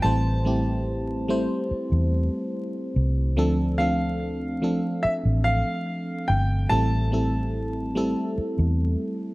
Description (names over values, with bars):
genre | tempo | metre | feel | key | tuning
contemporary R&B | 72 BPM | 4/4 | straight | A minor | A4 = 439 Hz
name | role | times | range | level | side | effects
clear concert grand piano | melody | 0.0-9.3 s | E5 to A5 | -29 LUFS | equal | none
FM electric piano | accompaniment | 0.0-9.3 s | F3 to C5 | -26 LUFS | equal | chorus
vintage muted fingered electric bass | bass | 0.0-8.9 s | G1 to E2 | -24 LUFS | equal | none
room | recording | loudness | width
light reverb, studio reverb | dark, warm production, vinyl crackle | -22 LUFS | side -21 dB against mid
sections
0.0-9.3 A section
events
none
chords
0.0 Am7; 3.4 Dm7; 6.7 Am7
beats
| 0.04 0.87 1.71 2.54 | 3.37 4.21 5.04 5.87 | 6.71 7.54 8.37 9.21